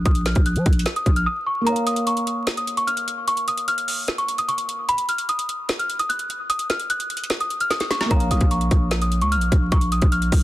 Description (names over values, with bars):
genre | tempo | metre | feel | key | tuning
hip hop, trap | 149 BPM | 4/4 | half-time | Bb minor | A4 = 440 Hz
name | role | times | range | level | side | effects
small celesta | melody | 0.0-10.4 s | Bb5 to Gb6 | -23 LUFS | equal | low-pass filter, digital delay
growling 808-style bass | bass | 0.0-1.3, 8.1-10.4 s | Bb1 to F3 | -21 LUFS | equal | none
trap drum kit | drums | 0.1-10.4 s | hi-hat, kick drum, snare drum | -22 LUFS | equal | none
felt-muted upright piano | accompaniment | 1.6-4.9, 8.1-10.4 s | Bb3 to F5 | -28 LUFS | equal | low-pass filter
room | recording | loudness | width
studio ambience | dense, heavily limited modern master, vinyl crackle | -19 LUFS | side -16 dB against mid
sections
0.0-10.4 A section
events
filter sweep 0.0-1.7; break 1.3-1.7, 1.7-8.1; drum fill 7.7-8.1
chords
0.0 Bbsus4; 1.7 Bbm; 4.9 N.C.; 8.1 Bbm